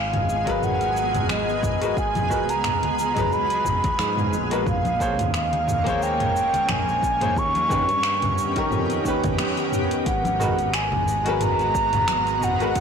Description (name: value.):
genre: sunset chillout.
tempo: 89 BPM.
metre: 4/4.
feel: swing 56% on 16ths.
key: G# dorian.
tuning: A4 = 440 Hz.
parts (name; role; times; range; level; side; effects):
mellow baroque flute; melody; 0.0-12.8 s; D#5 to C#6; -24 LUFS; right 1 dB; ping-pong delay.
shimmering ambient pad; sustained chords; 0.0-12.8 s; D#3 to A#5; -29 LUFS; right 1 dB; chorus, built-in reverb.
sustaining fretless electric bass; bass; 0.0-12.8 s; E#1 to G#2; -31 LUFS; equal; tube saturation, wide subtle chorus.
twinkling granular texture; texture; 0.0-10.1 s; E#3 to E#6; -40 LUFS; right 1 dB; none.
deep house drum kit; drums; 0.1-12.8 s; cabasa, finger snaps, hi-hat, toms; -28 LUFS; equal; overdrive, soft clipping on snare.
congas; percussion; 0.1-12.2 s; none; -34 LUFS; left 4 dB; none.
clear baby grand piano; accompaniment; 0.4-12.7 s; D#3 to C#5; -28 LUFS; moving between left 5 dB and right 3 dB; auto-pan, ping-pong delay.
electronic kick drum; drums; 0.5-12.8 s; none; -29 LUFS; equal; overdrive.
room: moderate scoring stage reverb, RT60 1.8 s, digital ambience.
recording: blown-out, overdriven recording, overdrive.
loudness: -20 LUFS.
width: side -6 dB against mid.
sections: 0.0-10.1 A section; 10.1-12.8 B section.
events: band accent 9.4-9.7.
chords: 0.0 G#m9; 4.7 A#m9; 7.4 D#7b13; 10.1 G#m9.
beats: 0.62 1.30 | 1.97 2.65 3.32 3.99 | 4.67 5.34 6.02 6.69 | 7.37 8.04 8.71 9.39 | 10.06 10.74 11.41 12.08 | 12.76.